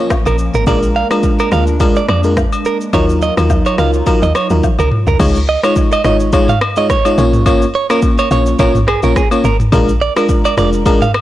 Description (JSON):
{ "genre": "afrobeats", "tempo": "106 BPM", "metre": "4/4", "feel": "swing 55% on 16ths", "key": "unclear", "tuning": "A4 = 439 Hz", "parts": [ { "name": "FM electric piano", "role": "accompaniment", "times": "0.0-11.1 s", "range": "Gb3 to Db5", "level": "-15 LUFS", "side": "left 1 dB", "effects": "chorus" }, { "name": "hollow soft pad", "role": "sustained chords", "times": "0.0-5.2 s", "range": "F3 to F4", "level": "-24 LUFS", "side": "equal", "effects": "chorus, sidechain pumping" }, { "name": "afro-pop drum kit", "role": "drums", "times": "0.1-11.2 s", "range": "crash cymbal, kick drum, rim click, shaker, toms", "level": "-16 LUFS", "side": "equal", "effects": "vintage 12-bit sampler grit, soft clipping on snare" }, { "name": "woodblock and agogo bells", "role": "percussion", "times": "0.1-11.2 s", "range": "none", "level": "-23 LUFS", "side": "left 5 dB", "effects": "none" }, { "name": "direct-recorded clean electric guitar", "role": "riff", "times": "0.3-11.1 s", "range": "Ab4 to F5", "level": "-18 LUFS", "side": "right 6 dB", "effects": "tape echo" }, { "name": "woody log drum bass", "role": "bass", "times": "0.3-10.9 s", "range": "F1 to F2", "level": "-15 LUFS", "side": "equal", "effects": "none" } ], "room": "digital ambience", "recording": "blown-out, overdriven recording, overdrive", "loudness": "-10 LUFS", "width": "side -14 dB against mid", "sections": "0.0-5.2 A section; 5.2-11.2 B section", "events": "drum fill 4.6-5.2", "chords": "0.0 Bbm; 0.7 Bb7; 2.9 Ebmadd9; 5.2 Dbadd9; 7.2 Bbm; 9.7 Bb7" }